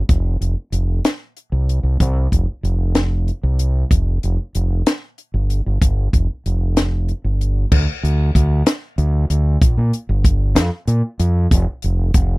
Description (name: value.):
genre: math rock and midwest emo.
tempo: 63 BPM (dotted quarters).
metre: 6/8.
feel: straight.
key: unclear.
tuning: A4 = 440 Hz.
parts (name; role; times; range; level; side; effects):
growling fingered electric bass; bass; 0.1-12.4 s; F1 to Bb2; -16 LUFS; equal; overdrive.
compact cocktail drum kit; drums; 0.1-12.3 s; crash cymbal, hi-hat, kick drum, snare drum; -16 LUFS; equal; none.
room: little or no reverb.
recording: dry, close 1970s-style studio recording.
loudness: -16 LUFS.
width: side -23 dB against mid.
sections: 0.0-7.7 A section; 7.7-12.4 B section.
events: none.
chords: none.